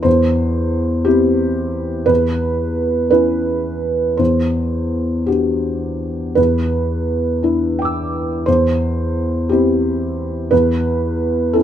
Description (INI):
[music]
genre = neoclassical minimalist piano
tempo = 58 BPM (dotted quarters)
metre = 6/8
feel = rubato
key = unclear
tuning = A4 = 440 Hz
[part]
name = felt-muted upright piano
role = solo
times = 0.0-11.6 s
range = E2 to E6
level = -15 LUFS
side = equal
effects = none
[sound]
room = light reverb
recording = minimal, uncompressed stereo recording, faint mains hum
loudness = -15 LUFS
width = side -10 dB against mid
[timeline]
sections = 0.0-11.6 A section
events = none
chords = 0.1 C/E; 2.1 C#m7/E; 4.2 D7/E; 6.4 Em7; 8.5 C/E; 10.5 Asus2/E (rootless)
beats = | 0.05 1.07 | 2.10 3.12 | 4.19 5.28 | 6.37 7.43 | 8.47 9.50 | 10.52 11.55